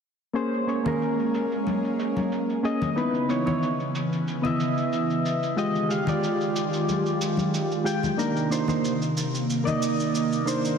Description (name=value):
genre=sunset chillout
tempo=92 BPM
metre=4/4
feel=swing 53% on 16ths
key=Bb dorian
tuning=A4 = 440 Hz
part: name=soft electric-piano-like synth keys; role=accompaniment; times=0.3-10.8 s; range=Ab3 to G5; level=-26 LUFS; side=moving between left 2 dB and right 4 dB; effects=chorus, auto-pan, low-pass filter, tape echo
part: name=airy breathy pad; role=sustained chords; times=0.4-10.8 s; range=C3 to G4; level=-28 LUFS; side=equal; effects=chorus
part: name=cabasa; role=drums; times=0.4-10.8 s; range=none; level=-37 LUFS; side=right 2 dB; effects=overdrive, low-pass filter on perc, low-pass filter on room
part: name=congas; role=percussion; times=0.9-9.8 s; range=none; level=-31 LUFS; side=left 4 dB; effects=none
room=wet lush hall reverb, RT60 1.8 s, digital ambience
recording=dense, heavily limited modern master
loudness=-23 LUFS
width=side -6 dB against mid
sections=0.4-10.8 A section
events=filter sweep on drum 0.4-10.8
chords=0.4 Bbm9; 3.0 Dbm9; 5.6 Fm9; 8.2 Cm9